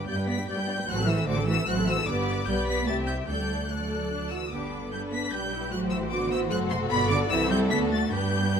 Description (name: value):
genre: quick classical-period movement for string orchestra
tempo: 149 BPM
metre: 3/4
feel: rubato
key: G major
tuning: A4 = 437 Hz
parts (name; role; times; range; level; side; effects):
- warm symphonic violin section; melody; 0.0-8.6 s; B5 to B6; -31 LUFS; left 3 dB; none
- rich symphonic violin section; second line; 0.0-8.6 s; F#4 to G5; -33 LUFS; left 4 dB; none
- warm symphonic viola section; accompaniment; 0.0-8.6 s; G3 to A4; -31 LUFS; right 1 dB; none
- rich studio double bass section; bass; 0.0-8.6 s; F#1 to G2; -32 LUFS; right 2 dB; none
- warm symphonic cello section; bass; 0.0-8.6 s; B2 to B3; -30 LUFS; right 2 dB; none
room: light reverb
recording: close, detailed microphones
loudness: -24 LUFS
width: side -7 dB against mid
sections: 0.0-8.6 A section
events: none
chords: 0.0 G; 0.9 F#dim/A; 2.1 G; 2.9 C; 3.3 D; 4.5 G; 5.7 F#dim/A; 6.9 G; 7.3 C; 7.7 D